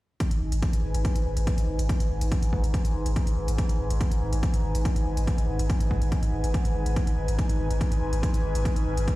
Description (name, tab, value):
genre	driving peak-time techno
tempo	142 BPM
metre	4/4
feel	straight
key	G# minor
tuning	A4 = 443 Hz
part	overtone-sweeping drone	drone	0.2-9.2 s	G#2	-36 LUFS	right 1 dB	chorus, built-in reverb, sidechain pumping
part	electronic hi-hat	drums	0.2-9.2 s	none	-42 LUFS	equal	overdrive
part	electronic kick drum	drums	0.2-9.2 s	none	-25 LUFS	equal	overdrive
part	airy breathy pad	texture	0.2-9.2 s	D#4 to G#5	-34 LUFS	left 1 dB	chorus, sidechain pumping
part	saturated sub bass	bass	0.4-9.1 s	G#1	-28 LUFS	equal	overdrive, sidechain pumping, low-pass filter
room	digital ambience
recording	played on a big sound system in a bare room, stone room reverb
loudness	-23 LUFS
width	side -18 dB against mid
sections	0.2-9.2 A section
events	none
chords	0.2 G#m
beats	| 0.20 0.63 1.05 1.47 | 1.89 2.32 2.74 3.16 | 3.58 4.01 4.43 4.85 | 5.27 5.70 6.12 6.54 | 6.96 7.39 7.81 8.23 | 8.65 9.08